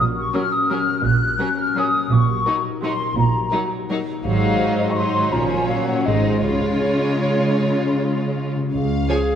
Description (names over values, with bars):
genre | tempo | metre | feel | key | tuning
classical | 147-182 BPM | 3/4 | rubato | Db major | A4 = 443 Hz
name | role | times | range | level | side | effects
mellow flute section | second line | 0.0-8.4 s | Db5 to F#6 | -22 LUFS | left 2 dB | none
concert harp | arpeggios | 0.0-9.4 s | Ab2 to Db5 | -25 LUFS | left 6 dB | none
rich symphonic double bass section | bass | 0.0-9.0 s | Ab1 to Db2 | -22 LUFS | right 5 dB | none
warm chamber cello section | bass | 0.0-9.0 s | Db2 to Db3 | -25 LUFS | right 4 dB | none
dark studio violin section | melody | 0.3-9.4 s | A#4 to F5 | -32 LUFS | left 4 dB | none
rich chamber violin section | second line | 0.3-9.2 s | C#4 to Ab5 | -29 LUFS | left 2 dB | none
rich chamber viola section | accompaniment | 0.3-9.2 s | F3 to Ab4 | -26 LUFS | right 1 dB | none
clear clarinet | second line | 9.1-9.4 s | Ab4 | -21 LUFS | equal | none
room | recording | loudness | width
wet concert hall reverb, RT60 2.0 s | none | -17 LUFS | side -9 dB against mid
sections
0.0-8.7 A section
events
none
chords
0.0 F#/A#; 2.1 Ebm7/Bb; 4.2 Ab7; 5.3 Bbm; 6.1 Ab; 6.4 Db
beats
0.33 0.70 | 1.04 1.39 1.76 | 2.11 2.46 2.83 | 3.17 3.52 3.90 | 4.25 4.60 4.97 | 5.32 5.68 6.06 | 6.42 6.81 7.21 | 7.58 7.96 8.36 | 8.73 9.09